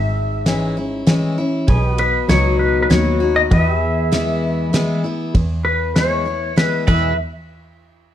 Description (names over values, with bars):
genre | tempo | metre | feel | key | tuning
honky-tonk and classic country | 98 BPM | 3/4 | straight | E major | A4 = 437 Hz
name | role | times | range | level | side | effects
pedal steel guitar | melody | 0.0-7.2 s | B4 to E5 | -20 LUFS | left 2 dB | plate reverb
picked steel-string acoustic guitar | accompaniment | 0.0-7.1 s | E2 to F#4 | -20 LUFS | left 3 dB | none
pedal steel guitar | sustained chords | 0.0-5.3 s | F#4 to E5 | -27 LUFS | right 4 dB | none
clear double bass | bass | 0.0-7.2 s | G#1 to E2 | -21 LUFS | equal | none
damped 70s drum kit | drums | 0.5-7.0 s | crash cymbal, kick drum, ride cymbal, snare drum | -16 LUFS | equal | none
clean electric guitar | second line | 6.9-7.2 s | B4 | -26 LUFS | right 5 dB | none
room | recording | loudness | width
moderate studio reverb, RT60 0.5 s | dark, warm production | -15 LUFS | side -11 dB against mid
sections
0.0-5.3 A section; 5.3-7.2 B section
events
drum fill 6.9-7.2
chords
0.0 C#m; 1.7 B; 3.5 E; 7.2 N.C.